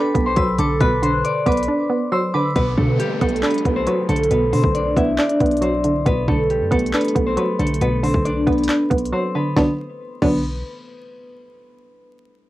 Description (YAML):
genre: hip hop, trap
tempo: 137 BPM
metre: 4/4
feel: half-time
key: B phrygian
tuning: A4 = 440 Hz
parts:
  - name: concert harp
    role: melody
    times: 0.0-10.9 s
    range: G3 to D6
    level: -21 LUFS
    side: left 1 dB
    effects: low-pass filter, cassette tape
  - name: glassy synth bell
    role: second line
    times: 0.0-2.5 s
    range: D6 to F#6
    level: -29 LUFS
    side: equal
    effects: chorus, phaser, cassette tape, tape echo
  - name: hollow square pluck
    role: accompaniment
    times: 0.0-10.4 s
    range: B2 to D4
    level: -21 LUFS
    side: right 2 dB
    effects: chorus, low-pass filter, cassette tape
  - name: warm 808-style bass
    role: bass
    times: 0.1-10.6 s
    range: B1 to B2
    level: -24 LUFS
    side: equal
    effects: none
  - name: trap drum kit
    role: drums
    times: 0.1-10.3 s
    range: crash cymbal, handclaps, hi-hat, kick drum, snare drum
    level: -23 LUFS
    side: equal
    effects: cassette tape
  - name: downlifter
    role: sound effects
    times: 2.6-6.1 s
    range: none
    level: -32 LUFS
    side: equal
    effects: none
room: light reverb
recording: home recording on cassette, vinyl crackle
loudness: -16 LUFS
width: side -16 dB against mid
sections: 0.0-2.6 A section; 2.6-9.6 B section; 9.6-11.3 C section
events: break 1.7-2.6, 9.1-9.6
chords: 0.0 Bm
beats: 0.37 | 0.81 1.24 1.68 2.12 | 2.56 3.00 3.43 3.87 | 4.31 4.75 5.18 5.62 | 6.06 6.50 6.94 7.38 | 7.81 8.25 8.69 9.13 | 9.56 10.00 10.44 10.88